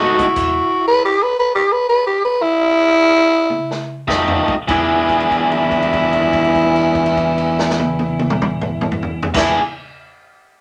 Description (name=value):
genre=electric blues shuffle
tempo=97-121 BPM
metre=4/4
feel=swing 65% on 8ths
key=E mixolydian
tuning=A4 = 439 Hz
part: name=growling tenor saxophone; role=melody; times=0.0-9.6 s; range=E4 to B4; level=-18 LUFS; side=equal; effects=none
part: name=electric slide guitar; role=second line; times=0.0-1.2, 4.7-9.6 s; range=E4 to A4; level=-29 LUFS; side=equal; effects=none
part: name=biting overdriven guitar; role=riff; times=0.0-0.2, 4.1-9.6 s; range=B2 to G#4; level=-19 LUFS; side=equal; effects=none
part: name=upright bass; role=bass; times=0.0-0.6, 4.1-9.6 s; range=E1 to G#2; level=-35 LUFS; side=equal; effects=none
part: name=vintage drum kit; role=drums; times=0.2-9.5 s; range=crash cymbal, hi-hat, kick drum, snare drum, toms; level=-25 LUFS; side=equal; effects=none
room=moderate club reverb, RT60 0.5 s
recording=none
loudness=-16 LUFS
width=mono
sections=0.0-4.7 A section; 4.7-9.7 B section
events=slowing down 0.4-4.7; drum fill 3.5-4.7; held note 4.7-9.3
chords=0.4 E5; 4.1 F9; 4.7 E7